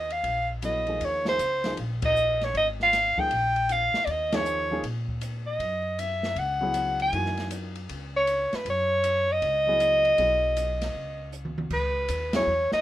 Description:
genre	modal jazz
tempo	157 BPM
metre	4/4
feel	swing 65% on 8ths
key	unclear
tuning	A4 = 439 Hz
part	mellow soprano saxophone	melody	0.0-12.8 s	Cb5 to Ab5	-24 LUFS	equal	none
part	upright bass	bass	0.0-12.8 s	Ab1 to Bb2	-33 LUFS	equal	none
part	open jazz drum kit	drums	0.1-12.8 s	crash cymbal, hi-hat, kick drum, ride cymbal, snare drum, toms	-36 LUFS	left 1 dB	none
part	warm baby grand piano	accompaniment	0.6-12.5 s	Fb3 to A4	-34 LUFS	equal	none
room	small room ambience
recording	rough home demo mix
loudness	-23 LUFS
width	side -13 dB against mid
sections	0.0-11.7 A section; 11.7-12.8 B section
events	band accent 2.0, 4.3, 12.3; drum fill 11.3-11.7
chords	0.0 Ebsus4; 5.6 Gb13sus4; 11.7 C#m9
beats	0.24 0.62 | 1.00 1.39 1.77 2.15 | 2.54 2.92 3.30 3.69 | 4.07 4.45 4.83 5.22 | 5.60 5.98 6.36 6.75 | 7.13 7.51 7.89 8.28 | 8.66 9.04 9.42 9.80 | 10.19 10.57 10.95 11.33 | 11.71 12.10 12.48

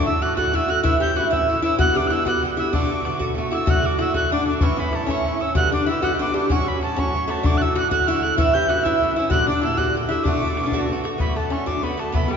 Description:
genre	celtic folk, Celtic jig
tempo	128 BPM (dotted quarters)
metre	6/8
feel	straight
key	D major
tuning	A4 = 439 Hz
part	reedy mid whistle	melody	0.0-12.4 s	G5 to G6	-24 LUFS	right 2 dB	none
part	metal-body resonator slide guitar	second line	0.0-12.4 s	G3 to G4	-24 LUFS	left 3 dB	none
part	Irish bouzouki	accompaniment	0.0-12.4 s	G2 to A4	-24 LUFS	right 3 dB	none
part	bodhran	percussion	0.1-12.4 s	none	-24 LUFS	left 1 dB	none
room	wet church reverb, RT60 2.8 s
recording	recorded in a church or concert hall, nothing above 7.5 kHz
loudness	-18 LUFS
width	side -6 dB against mid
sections	0.0-3.7 A section; 3.7-11.2 A section; 11.2-12.4 B section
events	none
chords	0.0 D; 0.8 A; 1.8 G; 2.7 D6; 3.7 D; 4.6 A; 5.6 G; 6.5 F#m; 7.4 D; 8.4 A; 9.3 Gm; 10.3 D6; 11.2 D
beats	0.37 | 0.84 1.31 | 1.78 2.26 | 2.73 3.20 | 3.67 4.14 | 4.61 5.08 | 5.55 6.03 | 6.50 6.97 | 7.44 7.91 | 8.38 8.85 | 9.32 9.79 | 10.26 10.73 | 11.20 11.67 | 12.14

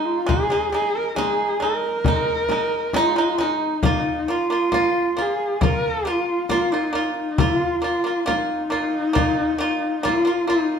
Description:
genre	mongolian traditional, Mongolian folk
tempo	68 BPM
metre	4/4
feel	straight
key	unclear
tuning	A4 = 440 Hz
part	warm horsehead fiddle	melody	0.0-10.8 s	Eb4 to Bb4	-22 LUFS	left 1 dB	none
part	pipa	arpeggios	0.0-10.8 s	Ab3 to F4	-24 LUFS	right 3 dB	none
part	frame drum	percussion	0.3-10.6 s	none	-24 LUFS	left 3 dB	none
room	wet large studio reverb, RT60 0.9 s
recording	band playing live in one room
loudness	-19 LUFS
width	side -7 dB against mid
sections	0.0-3.8 A section; 3.8-10.8 B section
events	none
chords	0.0 Ab5; 3.8 Bb5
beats	| 0.29 1.18 2.06 2.95 | 3.84 4.73 5.62 6.50 | 7.39 8.27 9.16 10.04

